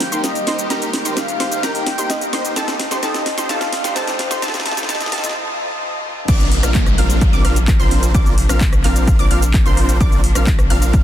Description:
EDM, festival progressive house; 129 BPM; 4/4; straight; Bb major; A4 = 437 Hz
breathy flute-like synth lead; melody; 0.0-5.3 s; C5 to G5; -25 LUFS; left 1 dB; analog chorus, tape echo
warm concert grand piano; accompaniment; 0.0-5.3 s; A3 to C5; -30 LUFS; right 3 dB
rich symphonic string section; sustained chords; 0.0-11.0 s; C3 to G4; -30 LUFS; left 1 dB; vintage 12-bit sampler grit, sidechain pumping
saturated sub bass; bass; 0.0-11.0 s; Bb1 to Eb2; -17 LUFS; equal; sidechain pumping, high-pass filter
house drum kit; drums; 0.0-11.0 s; crash cymbal, handclaps, hi-hat, rim click, shaker, snare drum; -23 LUFS; equal; overdrive
riser and downlifter; sound effects; 0.0-10.0 s; -30 LUFS; equal
wide unison pluck; arpeggios; 0.1-11.0 s; A5 to F6; -27 LUFS; equal; sidechain pumping, tape echo
dense compressed supersaw; riff; 0.1-11.0 s; C4 to F5; -25 LUFS; right 1 dB; sidechain pumping, tape echo
electronic kick drum; drums; 6.3-11.0 s; -15 LUFS; equal; overdrive
light reverb; dense, heavily limited modern master, high-pass filter; -14 LUFS; side -11 dB against mid
0.0-6.3 A section; 6.3-11.0 B section
build-up 0.0-6.3; drum fill 0.0-5.4; break 5.4-6.3; drop 6.3-11.0
0.0 Eb; 2.6 F; 6.3 Bbadd9

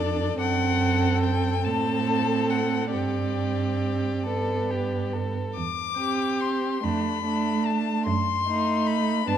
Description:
classical, slow romantic movement for string quartet; 47 BPM (dotted quarters); 6/8; uneven beats, rubato; A4 = 445 Hz
rich violin; melody; 0.0-9.4 s; D5 to D6; -29 LUFS; left 8 dB
rich violin; second line; 0.0-9.4 s; D4 to A4; -30 LUFS; left 2 dB
warm viola; accompaniment; 0.0-9.4 s; A3 to D4; -27 LUFS; right 4 dB
rich cello; bass; 0.0-9.4 s; E2 to A2; -28 LUFS; right 4 dB
moderate concert hall reverb, RT60 1.9 s; -23 LUFS; side -9 dB against mid
0.0-9.4 A section
0.4 F#dim; 2.9 Gsus4; 4.3 G; 5.6 C/E; 6.8 Dm/F; 8.1 F#dim7

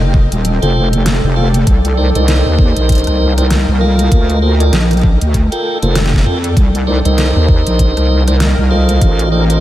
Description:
glitch hop; 98 BPM; 4/4; swing 58% on 16ths; C dorian; A4 = 440 Hz
wobble bass; bass; 0.0-9.6 s; Eb1 to F2; -12 LUFS; equal; chorus, tube saturation
pop drum kit; drums; 0.0-9.6 s; hi-hat, rim click, snare drum; -22 LUFS; equal; overdrive
granular cloud pad; texture; 0.0-9.6 s; A4 to G5; -22 LUFS; equal; built-in reverb, sidechain pumping
electronic kick drum; drums; 0.1-9.2 s; -12 LUFS; equal; overdrive
tonewheel organ; stabs; 0.6-9.6 s; Eb4 to G5; -18 LUFS; right 1 dB; stopped rotary speaker, sidechain pumping, analog delay
light reverb; -10 LUFS; side -14 dB against mid
0.0-9.6 A section
0.0 F7; 1.7 Cm9; 4.1 Bbmaj7; 6.6 Cm9; 9.0 F7

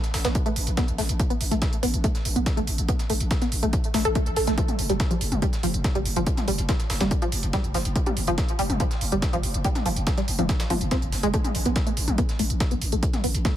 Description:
driving peak-time techno; 142 BPM; 4/4; straight; A4 = 440 Hz
breakbeat sampler-style drum kit; drums; 0.0-13.6 s; hi-hat, snare drum; -35 LUFS; equal; high-pass filter on hats, high-pass filter on snare, high-pass filter on room
techno drum kit; drums; 0.0-13.5 s; hi-hat, toms; -31 LUFS; equal
growling 808-style bass; bass; 0.1-13.4 s; F1 to A1; -27 LUFS; equal; overdrive, sidechain pumping, low-pass filter
tight sequenced synth; riff; 0.2-13.5 s; F3 to A4; -27 LUFS; equal; chorus, overdrive, sidechain pumping, dub echo
electronic kick drum; drums; 0.4-13.5 s; -25 LUFS; equal
digital ambience; -22 LUFS; side -12 dB against mid
0.0-13.6 A section

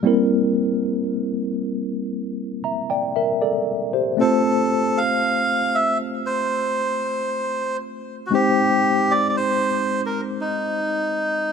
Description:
R&B; 58 BPM; 4/4; straight; A4 = 440 Hz
tine electric piano; accompaniment; 0.0-11.5 s; G3 to Bb5; -21 LUFS; left 1 dB; medium stereo tremolo
melodica; melody; 4.2-11.5 s; Eb4 to F5; -21 LUFS; right 1 dB; digital delay
light reverb, small room ambience; dark, warm production; -19 LUFS; side -6 dB against mid
0.0-11.5 A section
0.0 C7; 4.2 F; 8.3 Abmaj7

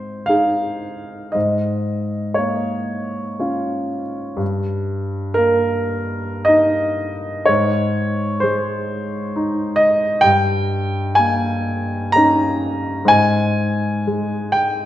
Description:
classical, romantic nocturne for solo piano; 50-68 BPM; 3/4; rubato; A4 = 440 Hz
warm grand piano; solo; 0.0-14.9 s; G2 to Bb5; -17 LUFS; equal
wet recital hall reverb, RT60 1.3 s; nothing above 10.3 kHz; -17 LUFS; side -12 dB against mid
0.0-14.9 A section
0.0 Ab; 1.4 Bbm7/Ab; 4.4 Eb/G; 7.5 Ab; 10.3 Eb7/G; 13.1 N.C.

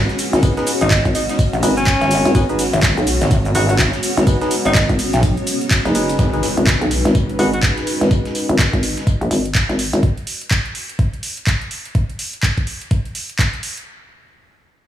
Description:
bass house; 125 BPM; 4/4; swing 60% on 16ths; G# minor; A4 = 435 Hz
dark analog pad; sustained chords; 0.0-10.0 s; G#3 to B4; -26 LUFS; equal; chorus, sidechain pumping
pulsing pluck wobble bass; bass; 0.0-5.4 s; G#1 to B1; -17 LUFS; equal; chorus, overdrive, sidechain pumping
granular cloud pad; texture; 0.0-10.0 s; B3 to D#5; -26 LUFS; equal; built-in reverb, sidechain pumping
dusty soul sampler-style drum kit; drums; 0.1-10.0 s; hi-hat, snare drum, tambourine; -30 LUFS; left 1 dB; overdrive, high-pass filter on snare, sidechain pumping on perc, high-pass filter on perc, sidechain pumping on hats, high-pass filter on hats, high-pass filter on room
garage drum kit; drums; 0.1-13.8 s; handclaps, hi-hat, ride cymbal, shaker; -22 LUFS; right 1 dB; overdrive
hollow knocking FM bass; bass; 0.3-10.0 s; F#1 to B1; -18 LUFS; equal; tube saturation, sidechain pumping
percussive organ stab; stabs; 0.4-7.5 s; D#4 to B4; -26 LUFS; right 1 dB; chorus, sidechain pumping, dub echo
electronic kick drum; drums; 0.4-13.5 s; -17 LUFS; equal; overdrive
clear alto saxophone; melody; 0.8-7.6 s; C#4 to F#4; -23 LUFS; equal; dub echo
impact; sound effects; 6.2-8.1 s; -27 LUFS; left 1 dB
light reverb, digital ambience; studio reverb; -15 LUFS; side -11 dB against mid
0.0-6.2 A section; 6.2-13.9 B section
drop 0.0-6.2; fade-out on ambient pad 6.2-10.0; impact 6.2-8.1
0.0 G#m

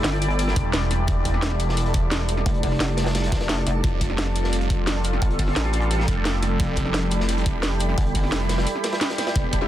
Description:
dark technical drum and bass; 174 BPM; 4/4; straight; A4 = 445 Hz
sweeping resonant pad; sustained chords; 0.0-9.7 s; G3 to D5; -30 LUFS; right 3 dB; chorus, sidechain pumping
pulsing pluck wobble bass; bass; 0.0-8.3 s; F1 to A1; -23 LUFS; equal; chorus
crunchy breakbeat drum kit; drums; 0.0-9.6 s; hi-hat, snare drum; -33 LUFS; equal; high-pass filter on hats, high-pass filter on snare, high-pass filter on room
drum and bass drum kit; drums; 0.0-9.7 s; hi-hat, snare drum; -27 LUFS; equal
granular cloud pad; texture; 0.0-9.7 s; A4 to B5; -30 LUFS; equal; built-in reverb, sidechain pumping
phased detuned saw bass; bass; 0.6-9.7 s; E1 to F1; -24 LUFS; equal; phaser, tube saturation
electronic kick drum; drums; 0.6-9.6 s; -24 LUFS; equal; overdrive
orchestra-hit-like synth stab; stabs; 9.6-9.7 s; D4 to G4; -25 LUFS; left 6 dB; built-in reverb
little or no reverb; dense, heavily limited modern master; -20 LUFS; side -12 dB against mid
0.0-9.7 A section
0.0 Em7; 3.8 Fadd9

